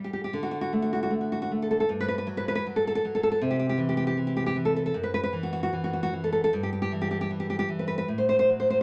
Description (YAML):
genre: romantic piece for solo classical guitar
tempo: 78 BPM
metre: 4/4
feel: rubato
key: E minor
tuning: A4 = 440 Hz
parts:
  - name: nylon-string guitar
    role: solo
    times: 0.0-8.8 s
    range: F#2 to C5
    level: -27 LUFS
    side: equal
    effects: none
room: wet studio reverb, RT60 0.5 s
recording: none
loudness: -27 LUFS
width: mono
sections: 0.0-8.8 A section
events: none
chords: 0.3 D5; 1.9 Gmaj9; 3.4 C; 5.0 F#m7; 6.5 Em/G; 8.1 Am6